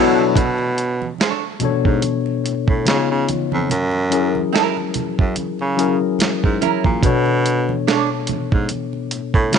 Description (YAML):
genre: R&B, neo-soul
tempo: 72 BPM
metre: 4/4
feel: swing 57% on 16ths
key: unclear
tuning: A4 = 439 Hz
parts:
  - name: archtop guitar, miked and amplified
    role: second line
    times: 0.0-8.1 s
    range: C#4 to C#5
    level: -22 LUFS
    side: right 14 dB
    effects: wah
  - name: tine electric piano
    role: accompaniment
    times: 0.0-9.6 s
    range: B2 to C#5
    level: -20 LUFS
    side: left 8 dB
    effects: overdrive
  - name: warm baritone saxophone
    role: bass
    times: 0.0-9.6 s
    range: E#2 to C#3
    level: -20 LUFS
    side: right 2 dB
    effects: none
  - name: dusty soul sampler-style drum kit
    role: drums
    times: 0.4-9.6 s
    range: hi-hat, kick drum, snare drum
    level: -19 LUFS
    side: right 2 dB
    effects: none
  - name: congas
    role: percussion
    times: 0.4-9.6 s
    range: none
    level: -29 LUFS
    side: right 11 dB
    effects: none
room: light reverb, digital ambience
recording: 1960s-style stereo with parts hard left and right, nothing above 10.3 kHz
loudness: -16 LUFS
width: side -7 dB against mid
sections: 0.4-9.6 A section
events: band accent 0.0-0.4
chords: 0.4 Bm9; 2.9 C#9; 3.7 F#7; 7.0 Bm9